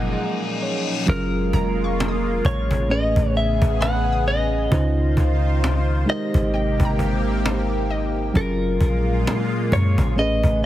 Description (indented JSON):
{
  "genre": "contemporary R&B",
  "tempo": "66 BPM",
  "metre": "4/4",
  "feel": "swing 58% on 16ths",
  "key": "F# major",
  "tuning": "A4 = 440 Hz",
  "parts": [
    { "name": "direct-recorded clean electric guitar", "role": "melody", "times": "0.0-10.6 s", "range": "A#4 to F#5", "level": "-26 LUFS", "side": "left 1 dB", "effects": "lush chorus, tape echo" },
    { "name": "mellow FM electric piano", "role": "accompaniment", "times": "0.0-10.7 s", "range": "A2 to G#5", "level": "-25 LUFS", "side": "right 1 dB", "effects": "chorus" },
    { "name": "lush unison pad", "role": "sustained chords", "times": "0.0-10.7 s", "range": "A#2 to B#4", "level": "-26 LUFS", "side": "equal", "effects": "chorus, phaser" },
    { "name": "clean 808-style bass", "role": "bass", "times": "0.0-10.7 s", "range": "E#1 to F#2", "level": "-22 LUFS", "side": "equal", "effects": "none" },
    { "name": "cajon", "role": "drums", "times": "0.0-10.7 s", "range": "none", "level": "-26 LUFS", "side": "equal", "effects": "none" },
    { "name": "reverse cymbal", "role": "sound effects", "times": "0.0-1.1 s", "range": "none", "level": "-30 LUFS", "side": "left 5 dB", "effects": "none" },
    { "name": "glassy wavetable pluck", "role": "texture", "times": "1.5-9.1 s", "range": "D#5 to D#6", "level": "-36 LUFS", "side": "equal", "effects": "chorus, tape echo" }
  ],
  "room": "light reverb, digital ambience",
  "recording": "heavily compressed radio sound",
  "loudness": "-18 LUFS",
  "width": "side -13 dB against mid",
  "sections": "0.0-1.1 A section; 1.1-10.7 B section",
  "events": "FM electric piano fill 0.0-1.1; reverse cymbal 0.0-1.1",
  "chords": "0.0 F#maj9; 2.9 Amaj9; 4.7 C#maj9; 6.1 G#maj9; 8.4 F#maj9"
}